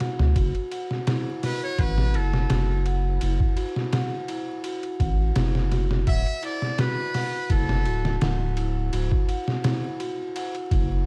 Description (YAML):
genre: trip hop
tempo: 84 BPM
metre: 4/4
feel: straight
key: unclear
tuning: A4 = 435 Hz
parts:
  - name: large celesta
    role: arpeggios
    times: 0.0-11.1 s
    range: E4 to F#5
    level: -34 LUFS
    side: equal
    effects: tape echo
  - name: trip hop sampler-style drum kit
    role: drums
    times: 0.0-10.9 s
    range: hi-hat, kick drum, ride cymbal, snare drum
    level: -28 LUFS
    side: equal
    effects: none
  - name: round analog bass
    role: bass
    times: 0.2-11.0 s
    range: D1 to D2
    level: -26 LUFS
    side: equal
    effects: none
  - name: trumpet with metal mute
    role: melody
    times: 1.4-8.2 s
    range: A4 to E5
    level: -34 LUFS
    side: equal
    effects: tape echo
room: digital ambience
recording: dark, warm production, vinyl crackle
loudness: -25 LUFS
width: mono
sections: 0.0-11.1 A section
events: none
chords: 0.4 F#m; 6.1 D